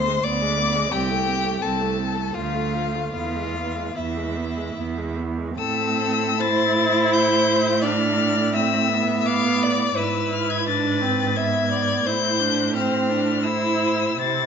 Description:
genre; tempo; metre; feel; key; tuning
classical, slow romantic movement for string quartet; 72-88 BPM; 3/4; rubato; A minor; A4 = 440 Hz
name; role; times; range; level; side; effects
rich violin; melody; 0.0-14.5 s; E5 to A6; -25 LUFS; left 9 dB; none
clear violin; second line; 0.0-14.5 s; E4 to F5; -26 LUFS; left 3 dB; none
rich viola; accompaniment; 0.0-14.5 s; F3 to E4; -25 LUFS; right 3 dB; none
rich cello; bass; 0.0-14.5 s; C2 to C3; -26 LUFS; right 6 dB; none
room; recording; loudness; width
wet recital hall reverb, RT60 1.3 s; nothing above 7.8 kHz; -19 LUFS; side -7 dB against mid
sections
0.0-5.6 A section; 5.6-14.5 B section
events
none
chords
0.0 G#dim/D; 0.9 Am/C; 2.4 Dm; 3.1 E; 5.6 Am; 7.8 Bm7b5/A; 10.0 E7/G#; 12.1 Am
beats
0.23 | 0.92 1.62 2.36 | 3.15 3.96 4.76 | 5.57 6.38 7.11 | 7.83 8.53 9.25 | 9.96 10.67 11.37 | 12.06 12.74 13.44 | 14.20

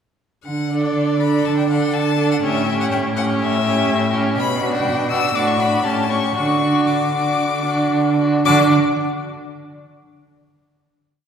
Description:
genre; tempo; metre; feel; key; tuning
quick classical-period movement for string quartet; 113-124 BPM; 4/4; straight; D major; A4 = 440 Hz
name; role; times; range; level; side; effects
rich violin; melody; 0.4-8.7 s; D5 to E6; -23 LUFS; left 7 dB; none
rich cello; bass; 0.4-8.7 s; A2 to D3; -20 LUFS; right 3 dB; none
clear violin; second line; 0.7-8.7 s; F#4 to A4; -24 LUFS; left 2 dB; none
rich viola; accompaniment; 0.7-8.7 s; C#4 to D4; -22 LUFS; right 1 dB; none
room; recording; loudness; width
wet concert hall reverb, RT60 2.2 s; heard from further back in the room; -16 LUFS; side -7 dB against mid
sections
0.5-8.5 A section; 8.5-10.5 final chord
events
none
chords
0.5 D5; 2.4 A7; 4.4 Bm; 5.4 D/A; 5.9 A7; 6.4 D; 8.5 N.C.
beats
| 0.45 0.95 1.45 1.94 | 2.43 2.92 3.40 3.89 | 4.38 4.86 5.35 5.85 | 6.36 6.88 7.40 7.93 | 8.45

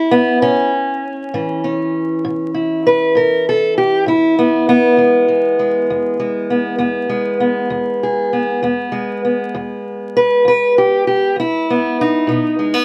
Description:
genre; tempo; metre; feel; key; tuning
acoustic country blues, solo or duo; 66 BPM (dotted quarters); 12/8; straight; E major; A4 = 436 Hz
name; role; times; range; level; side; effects
fingerpicked steel-string acoustic guitar; solo; 0.0-12.8 s; E2 to B4; -16 LUFS; equal; none
room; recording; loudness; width
light reverb; vinyl crackle; -16 LUFS; mono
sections
0.0-12.8 A section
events
none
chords
0.0 A; 5.0 E; 12.3 B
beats
0.41 | 1.33 2.24 3.15 4.07 | 4.98 5.89 6.80 7.72 | 8.63 9.54 10.46 11.37 | 12.28

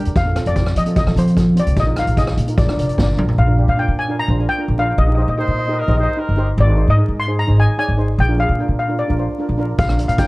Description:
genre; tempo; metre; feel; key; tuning
calypso; 150 BPM; 4/4; straight; unclear; A4 = 441 Hz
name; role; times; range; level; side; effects
clear trumpet; second line; 0.0-0.1, 5.4-6.5 s; Bb4 to C5; -26 LUFS; right 2 dB; none
steel pan; accompaniment; 0.0-10.3 s; C4 to Eb5; -24 LUFS; right 1 dB; none
upright bass; bass; 0.1-10.2 s; F1 to F3; -17 LUFS; equal; none
street-band drum kit; drums; 0.1-3.4, 9.8-10.3 s; hi-hat, kick drum, rim click, snare drum, toms; -19 LUFS; equal; none
steel pan; melody; 0.2-10.3 s; C5 to C6; -22 LUFS; left 2 dB; none
room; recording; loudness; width
light reverb, small room ambience; dark, warm production, vinyl crackle; -14 LUFS; side -22 dB against mid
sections
0.0-3.4 A section; 3.4-10.3 B section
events
drum fill 3.0-3.4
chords
0.2 F; 1.8 Bb7sus4; 2.6 Bb6; 3.4 Bb; 5.0 Eb/Bb; 6.6 Ab; 8.2 Bb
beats
| 0.16 0.57 0.97 1.37 | 1.77 2.18 2.58 2.98 | 3.38 3.79 4.19 4.59 | 4.99 5.39 5.79 6.19 | 6.59 6.99 7.39 7.79 | 8.19 8.59 8.99 9.39 | 9.79 10.19

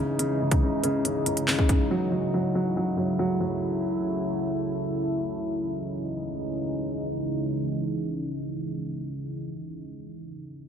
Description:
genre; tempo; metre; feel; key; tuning
hip hop, drill; 140 BPM; 4/4; half-time; C# minor; A4 = 440 Hz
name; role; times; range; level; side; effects
dark grand piano; accompaniment; 0.0-4.5 s; C#3 to F#3; -26 LUFS; equal; low-pass filter
deep dark ambient pad; sustained chords; 0.0-9.5 s; C#3 to E4; -28 LUFS; equal; chorus, built-in reverb, low-pass filter
drill drum kit; drums; 0.2-1.8 s; handclaps, hi-hat, kick drum; -23 LUFS; equal; overdrive
room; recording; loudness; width
light reverb, digital ambience; none; -25 LUFS; side -8 dB against mid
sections
0.0-5.3 A section; 5.3-8.8 B section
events
filter sweep 0.0-5.3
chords
0.0 C#madd9; 1.9 F#m7; 5.3 C#madd9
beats
| 0.19 0.62 1.05 1.48 | 1.91 2.33 2.76 3.19 | 3.62 4.05 4.48 4.91 | 5.33 5.76 6.19 6.62 | 7.05 7.48 7.91 8.34

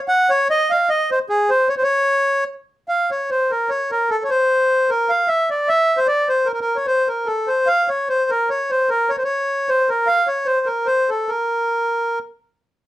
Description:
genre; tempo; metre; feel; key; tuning
musette; 150 BPM; 3/4; straight; Bb minor; A4 = 440 Hz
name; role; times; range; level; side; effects
accordion; solo; 0.1-12.2 s; Ab4 to Gb5; -16 LUFS; equal; none
room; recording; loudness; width
wet studio ambience, RT60 0.5 s; rough home demo mix; -16 LUFS; side -14 dB against mid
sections
0.0-2.9 A section; 2.9-12.8 B section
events
slowing down 10.1-12.8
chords
none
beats
0.10 | 0.50 0.89 1.28 | 1.68 2.07 2.48 | 2.88 3.29 3.69 | 4.09 4.49 4.88 | 5.28 5.68 6.07 | 6.47 6.87 7.27 | 7.68 8.08 8.49 | 8.89 9.28 9.68 | 10.07 10.47 10.88 | 11.30 11.75

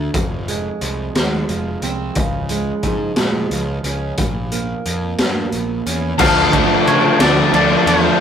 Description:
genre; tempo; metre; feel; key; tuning
quiet-loud alternative rock; 60 BPM (dotted quarters); 6/8; straight; D harmonic minor; A4 = 440 Hz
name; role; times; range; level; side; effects
picked steel-string acoustic guitar; arpeggios; 0.0-6.7 s; F2 to D4; -24 LUFS; right 4 dB; none
fuzz picked electric bass; bass; 0.0-8.1 s; F1 to C#3; -24 LUFS; left 1 dB; overdrive
raw garage drum kit; drums; 0.1-8.0 s; crash cymbal, hi-hat, kick drum, ride cymbal, snare drum; -19 LUFS; equal; none
twangy electric guitar; melody; 6.2-8.2 s; C5 to F5; -19 LUFS; left 1 dB; none
string machine, cellos; sustained chords; 6.2-8.2 s; F4 to F5; -25 LUFS; left 1 dB; phaser, ensemble chorus
crunchy overdriven guitar; riff; 6.2-8.2 s; D3 to D4; -16 LUFS; left 4 dB; spring reverb
overdriven semi-hollow guitar; riff; 6.2-8.2 s; D3 to D4; -20 LUFS; right 5 dB; none
thick fuzz guitar; riff; 6.2-8.2 s; D3 to D4; -20 LUFS; equal; distortion
room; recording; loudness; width
moderate studio reverb, RT60 0.5 s; rough rehearsal-room recording, warm saturation; -15 LUFS; side -8 dB against mid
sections
0.0-6.2 A section; 6.2-8.2 B section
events
none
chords
0.1 Fm; 2.2 C#; 4.2 Bbm; 6.2 Dm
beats
| 0.14 1.15 | 2.16 3.17 | 4.18 5.19 | 6.20 7.21

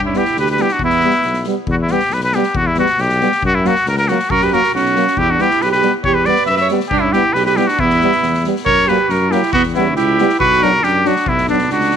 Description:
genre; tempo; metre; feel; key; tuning
balkan folk, Balkan brass band; 138 BPM; 2/4; straight; E dorian sharp4; A4 = 443 Hz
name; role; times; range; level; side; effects
mellow tuba; bass; 0.0-12.0 s; B1 to G2; -21 LUFS; left 2 dB; none
cornet with straight mute; melody; 0.1-12.0 s; D4 to E5; -15 LUFS; left 1 dB; none
clear alto saxophone; second line; 0.1-1.4, 4.3-12.0 s; B3 to C#5; -19 LUFS; right 9 dB; none
mellow trombone; accompaniment; 0.1-12.0 s; F#3 to G3; -23 LUFS; right 11 dB; none
street-band drum kit; percussion; 0.1-12.0 s; kick drum, snare drum; -27 LUFS; left 4 dB; none
warm euphonium; accompaniment; 0.2-12.0 s; A#3 to D4; -24 LUFS; left 14 dB; none
room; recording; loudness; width
light reverb, studio ambience; 1960s-style stereo with parts hard left and right; -12 LUFS; side -8 dB against mid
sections
0.0-1.7 A section; 1.7-8.7 A section; 8.7-12.0 B section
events
none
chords
0.0 G; 0.8 Em; 3.4 F#; 5.2 Em; 6.9 G; 7.8 Em; 8.7 F#; 9.5 Em; 10.4 Bm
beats
0.38 | 0.82 1.25 | 1.69 2.13 | 2.57 3.00 | 3.44 3.88 | 4.31 4.75 | 5.18 5.62 | 6.06 6.49 | 6.93 7.36 | 7.80 8.23 | 8.67 9.10 | 9.54 9.97 | 10.41 10.84 | 11.28 11.71

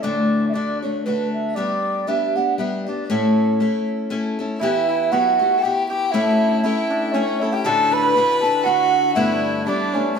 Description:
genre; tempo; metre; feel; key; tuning
celtic folk, Celtic waltz; 118 BPM; 3/4; swing 55% on 8ths; A mixolydian; A4 = 437 Hz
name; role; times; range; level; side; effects
baroque flute; melody; 0.0-10.2 s; B4 to B5; -20 LUFS; right 3 dB; none
picked steel-string acoustic guitar; accompaniment; 0.0-10.2 s; D2 to A4; -22 LUFS; left 3 dB; none
hammered dulcimer; second line; 4.6-10.2 s; C#4 to B4; -26 LUFS; equal; none
rich fiddle; second line; 4.6-10.2 s; C#4 to B4; -26 LUFS; left 3 dB; none
room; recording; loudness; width
wet stone room reverb, RT60 1.0 s; band playing live in one room; -17 LUFS; side -6 dB against mid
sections
0.0-4.6 A section; 4.6-10.2 B section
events
none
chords
0.0 D; 1.6 G; 3.1 A; 4.6 Emadd9; 6.1 A; 7.6 Dadd9; 9.2 Gadd9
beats
| 0.03 0.54 1.05 | 1.56 2.07 2.58 | 3.09 3.60 4.10 | 4.61 5.12 5.62 | 6.13 6.63 7.14 | 7.64 8.15 8.65 | 9.16 9.66 10.17

